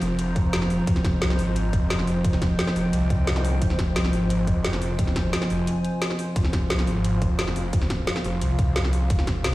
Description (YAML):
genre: dark technical drum and bass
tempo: 175 BPM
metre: 4/4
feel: straight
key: F minor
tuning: A4 = 439 Hz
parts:
  - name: dark analog pad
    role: sustained chords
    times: 0.0-9.5 s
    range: F3 to F5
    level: -26 LUFS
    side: equal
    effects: chorus, sidechain pumping
  - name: snarling distorted saw bass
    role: bass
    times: 0.0-9.5 s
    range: Eb1 to C2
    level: -25 LUFS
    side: equal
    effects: distortion, overdrive, sidechain pumping
  - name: drum and bass drum kit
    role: drums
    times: 0.0-9.5 s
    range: hi-hat, snare drum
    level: -29 LUFS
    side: equal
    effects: none
  - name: granular cloud pad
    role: texture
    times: 0.0-9.5 s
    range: F4 to Bb5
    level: -34 LUFS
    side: equal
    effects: built-in reverb, sidechain pumping
  - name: electronic kick drum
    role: drums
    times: 0.4-9.3 s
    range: none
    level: -23 LUFS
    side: equal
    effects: none
  - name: zap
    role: sound effects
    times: 3.4 s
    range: none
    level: -35 LUFS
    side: left 1 dB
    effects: none
room: light reverb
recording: played on a big sound system in a bare room, large studio reverb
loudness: -21 LUFS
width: side -17 dB against mid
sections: 0.0-9.5 A section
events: break 5.7-6.4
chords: 0.0 F5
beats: 0.19 0.53 | 0.87 1.22 1.56 1.90 | 2.25 2.59 2.93 3.27 | 3.62 3.96 4.30 4.64 | 4.99 5.33 5.67 6.02 | 6.36 6.70 7.04 7.39 | 7.73 8.07 8.42 8.76 | 9.10 9.45